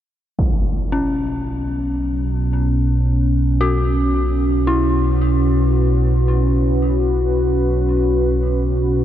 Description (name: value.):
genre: dark ambient drone.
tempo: free time.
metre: none.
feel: none.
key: unclear.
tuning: A4 = 440 Hz.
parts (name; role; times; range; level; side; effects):
deep dark ambient pad; sustained chords; 2.1-9.0 s; C#4 to B4; -20 LUFS; equal; chorus, built-in reverb.
analog drone; drone; 0.9-9.0 s; B1 to B2; -18 LUFS; equal; lush chorus.
impact; percussion; 0.4-0.6 s; none; -22 LUFS; equal; low-pass filter on sfx.
bronze singing bowl; texture; 0.4-9.0 s; none; barely audible; none; none.
dark detuned synth bell; arpeggios; 0.9-9.0 s; C#4 to F#4; -25 LUFS; left 3 dB; chorus, tape echo.
room: moderate huge ambient reverb, RT60 7.4 s.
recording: dark, warm production.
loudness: -16 LUFS.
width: side -11 dB against mid.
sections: 0.4-9.0 A section.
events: filter sweep on synth drone 0.4-9.0.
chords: 0.4 Bsus2.